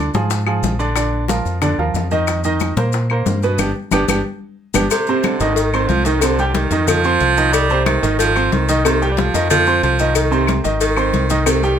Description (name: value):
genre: latin, salsa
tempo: 183 BPM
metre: 4/4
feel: straight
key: unclear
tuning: A4 = 441 Hz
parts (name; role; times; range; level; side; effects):
- bright upright piano; accompaniment; 0.0-11.8 s; B2 to C6; -19 LUFS; right 2 dB; none
- deep dub fingered electric bass; bass; 0.0-11.8 s; G1 to Bb2; -20 LUFS; left 1 dB; none
- congas; percussion; 0.1-11.8 s; none; -24 LUFS; left 4 dB; none
- maracas; percussion; 0.1-11.8 s; none; -28 LUFS; left 8 dB; none
- bongos and cowbell; percussion; 0.2-11.6 s; none; -24 LUFS; left 6 dB; none
- claves; percussion; 0.5-11.6 s; none; -26 LUFS; left 8 dB; none
- clear baritone saxophone; second line; 4.9-11.8 s; C3 to G3; -18 LUFS; right 4 dB; none
room: moderate small room reverb, RT60 0.5 s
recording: none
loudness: -14 LUFS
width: side -8 dB against mid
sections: 0.0-4.9 A section; 4.9-11.8 B section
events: drum fill 3.6-4.9; band accent 3.6-4.9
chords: 0.0 Ddim; 1.0 Bb; 2.3 F7sus4; 3.6 G; 4.9 Ab; 6.2 Cm; 6.9 F5; 7.5 Ab; 8.8 Cm; 9.5 F5; 10.2 Ab